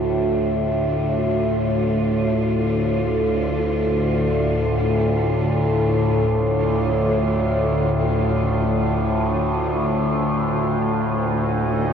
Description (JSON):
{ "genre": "dark ambient drone", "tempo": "free time", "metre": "none", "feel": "none", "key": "D minor", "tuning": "A4 = 439 Hz", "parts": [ { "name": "rich symphonic cello section", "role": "sustained chords", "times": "0.0-11.9 s", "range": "D2 to F4", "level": "-28 LUFS", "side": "equal", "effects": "none" }, { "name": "overtone-sweeping drone", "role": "drone", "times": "0.0-11.9 s", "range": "D2 to A2", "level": "-19 LUFS", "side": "equal", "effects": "chorus, built-in reverb" } ], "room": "wet huge ambient reverb, RT60 7.3 s", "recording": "worn, warbling old tape, cassette tape, warbly pitch drift", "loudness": "-18 LUFS", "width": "side -7 dB against mid", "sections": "0.0-11.9 A section", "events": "fade-in on cello section 0.0-11.9", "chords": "0.0 Dm; 10.9 Cmadd9/D (rootless)", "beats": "free time" }